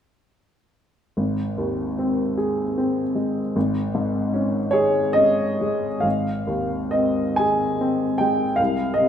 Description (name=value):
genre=classical, romantic nocturne for solo piano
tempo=42-52 BPM (dotted quarters)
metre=6/8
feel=rubato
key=Ab major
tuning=A4 = 441 Hz
part: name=warm upright piano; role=solo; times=1.2-9.1 s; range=Ab1 to Ab5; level=-20 LUFS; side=equal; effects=none
room=wet recital hall reverb, RT60 1.3 s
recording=minimal, uncompressed stereo recording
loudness=-20 LUFS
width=side -9 dB against mid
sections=1.2-6.0 A section; 6.0-9.1 B section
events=none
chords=1.2 Ab; 3.6 Db5/Ab; 6.0 Ab